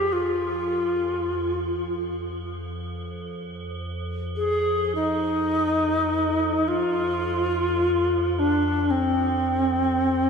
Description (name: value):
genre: world meditative, free-time meditation music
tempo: free time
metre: none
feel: none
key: F dorian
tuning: A4 = 440 Hz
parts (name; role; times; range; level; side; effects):
- bright reedy low Native American-style wooden flute; melody; 0.0-10.3 s; C4 to Ab4; -22 LUFS; equal; shimmer reverb, ping-pong delay
- icy glass pad; drone; 0.0-10.3 s; F2; -30 LUFS; right 1 dB; chorus, built-in reverb
room: wet church reverb, RT60 3.2 s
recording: dark, warm production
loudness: -22 LUFS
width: side -6 dB against mid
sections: 0.0-10.3 A section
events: none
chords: none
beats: free time